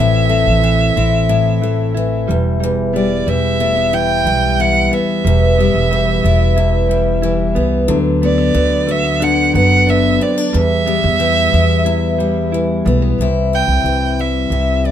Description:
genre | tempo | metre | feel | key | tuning
acoustic pop | 91 BPM | 4/4 | straight | E minor | A4 = 442 Hz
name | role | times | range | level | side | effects
rich violin | melody | 0.0-14.9 s | D5 to G5 | -18 LUFS | right 4 dB | none
picked steel-string acoustic guitar | accompaniment | 0.0-14.9 s | E2 to F#4 | -16 LUFS | left 5 dB | none
direct-recorded clean electric guitar | arpeggios | 0.0-13.8 s | E3 to E4 | -22 LUFS | right 8 dB | none
upright bass | bass | 0.0-14.9 s | E1 to E2 | -17 LUFS | right 1 dB | none
room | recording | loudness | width
light reverb | close, detailed microphones | -12 LUFS | side -10 dB against mid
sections
0.0-13.2 A section; 13.2-14.9 B section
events
none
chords
0.0 Am; 2.3 Em; 7.9 Bm/D; 10.5 Em; 13.2 C

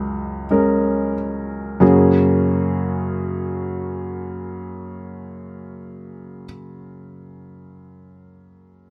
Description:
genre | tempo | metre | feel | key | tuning
neoclassical minimalist piano | 47 BPM | 4/4 | rubato | F# major | A4 = 437 Hz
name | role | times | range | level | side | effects
clear upright piano | solo | 0.0-8.9 s | C#2 to F#5 | -21 LUFS | equal | none
room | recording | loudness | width
little or no reverb | close, detailed microphones | -20 LUFS | mono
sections
0.0-1.8 A section; 1.8-6.9 B section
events
slowing down 0.0-1.8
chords
0.0 F#add9

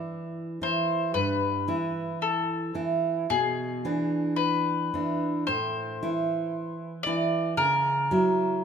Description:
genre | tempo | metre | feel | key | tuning
romantic duo for mandolin and classical guitar | 56 BPM | 4/4 | rubato | unclear | A4 = 443 Hz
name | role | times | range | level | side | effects
mandolin | melody | 0.0-8.6 s | G#4 to D5 | -28 LUFS | left 4 dB | none
nylon-string guitar | accompaniment | 0.0-8.6 s | G2 to E4 | -27 LUFS | right 3 dB | none
room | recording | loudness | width
moderate recital hall reverb, RT60 1.8 s | minimal, uncompressed stereo recording | -25 LUFS | side -7 dB against mid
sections
0.0-8.6 A section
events
none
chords
0.0 Em; 3.3 E7/B; 5.5 Am; 7.6 F#7/C#

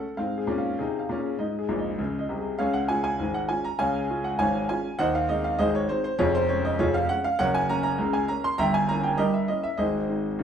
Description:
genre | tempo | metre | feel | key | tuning
ragtime piano | 100 BPM | 2/4 | straight | Db major | A4 = 440 Hz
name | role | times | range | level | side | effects
warm grand piano | solo | 0.0-10.4 s | F1 to C6 | -23 LUFS | equal | none
room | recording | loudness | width
moderate large studio reverb, RT60 1.2 s | band playing live in one room | -23 LUFS | side -8 dB against mid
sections
0.0-2.6 A section; 2.6-10.4 B section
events
grand piano fill 1.7-2.6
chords
0.2 Db/Ab; 1.4 Ab; 2.6 Db; 5.0 Ab/Eb; 6.2 Db/F; 7.4 Gb; 8.6 Gdim7; 9.8 Ab

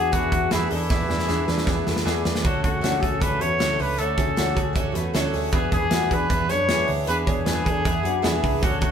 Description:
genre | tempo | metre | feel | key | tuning
jangly indie pop | 156 BPM | 4/4 | straight | unclear | A4 = 441 Hz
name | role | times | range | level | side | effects
clear trumpet | melody | 0.0-8.9 s | E4 to C#5 | -26 LUFS | equal | none
picked twelve-string acoustic guitar | accompaniment | 0.0-8.9 s | D3 to G#4 | -27 LUFS | right 3 dB | none
electric guitar through a small old amp | arpeggios | 0.0-8.9 s | F#4 to C#5 | -29 LUFS | left 6 dB | none
vintage muted picked electric bass | bass | 0.0-8.9 s | C#2 to F#2 | -27 LUFS | equal | none
modern studio drum kit | drums | 0.1-8.9 s | hi-hat, kick drum, snare drum | -25 LUFS | equal | none
room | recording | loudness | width
moderate stone room reverb, RT60 1.2 s | band playing live in one room | -20 LUFS | side -8 dB against mid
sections
0.0-2.4 A section; 2.4-8.9 B section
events
drum fill 0.9-2.4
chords
0.0 E7; 2.4 Dmaj7

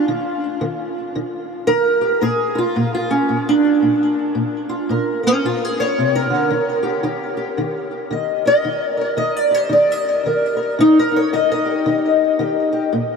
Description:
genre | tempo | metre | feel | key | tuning
acoustic country blues, solo or duo | 112 BPM | 4/4 | swing 60% on 8ths | unclear | A4 = 440 Hz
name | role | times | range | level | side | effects
fingerpicked steel-string acoustic guitar | solo | 0.0-13.2 s | Bb2 to Eb5 | -16 LUFS | equal | analog chorus, ping-pong delay
room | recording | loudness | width
wet huge ambient reverb, RT60 8.9 s | dreamy mix soaked in reverb | -16 LUFS | side -5 dB against mid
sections
0.0-13.2 A section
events
steel-string acoustic guitar solo 0.0-13.2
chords
0.1 Eb5; 2.2 Bb; 6.5 Eb

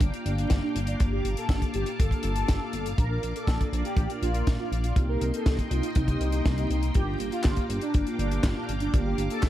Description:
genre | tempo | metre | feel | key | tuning
italo disco | 121 BPM | 4/4 | straight | G minor | A4 = 440 Hz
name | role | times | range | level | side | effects
mellow synth brass | melody | 0.0-9.5 s | D4 to Bb4 | -33 LUFS | equal | chorus, phaser, ping-pong delay
string machine, full ensemble | sustained chords | 0.0-9.5 s | Bb3 to D6 | -35 LUFS | left 1 dB | ensemble chorus
chorused synth bass | bass | 0.0-9.5 s | G1 to C2 | -29 LUFS | equal | none
kick drum | drums | 0.0-9.5 s | none | -24 LUFS | equal | none
tight funk drum kit | drums | 0.0-9.5 s | handclaps, hi-hat, snare drum | -35 LUFS | left 2 dB | none
mellow synth brass | stabs | 0.1-9.5 s | Bb3 to D5 | -35 LUFS | right 1 dB | chorus
room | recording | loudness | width
light reverb, studio ambience | dark, warm production, vinyl crackle | -24 LUFS | side -13 dB against mid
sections
0.0-9.5 A section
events
filter sweep on analog polysynth 0.0-9.5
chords
0.0 Gm7; 3.0 Bb; 5.0 Cm7; 6.9 Gm7

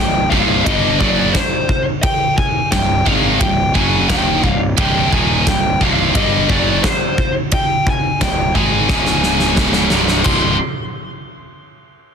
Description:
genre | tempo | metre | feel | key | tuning
heavy metal | 88 BPM | 4/4 | straight | unclear | A4 = 439 Hz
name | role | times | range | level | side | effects
high-gain lead guitar | melody | 0.0-10.6 s | C5 to C6 | -20 LUFS | left 2 dB | distortion, tape echo
heavy high-gain guitar | riff | 0.0-10.5 s | C2 to Ab3 | -20 LUFS | left 15 dB | distortion
heavy high-gain guitar | riff | 0.0-10.5 s | C2 to Ab3 | -19 LUFS | right 17 dB | distortion
fuzz picked electric bass | bass | 0.0-10.6 s | C1 to Ab1 | -20 LUFS | equal | overdrive
big rock drum kit | drums | 0.3-10.4 s | crash cymbal, kick drum, ride cymbal, snare drum | -18 LUFS | equal | soft clipping on snare
room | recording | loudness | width
little or no reverb | dense, heavily limited modern master | -13 LUFS | side -6 dB against mid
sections
0.0-10.3 A section; 10.3-12.1 B section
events
drum fill 8.9-10.3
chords
0.0 Cm; 8.9 Db5; 9.9 C5

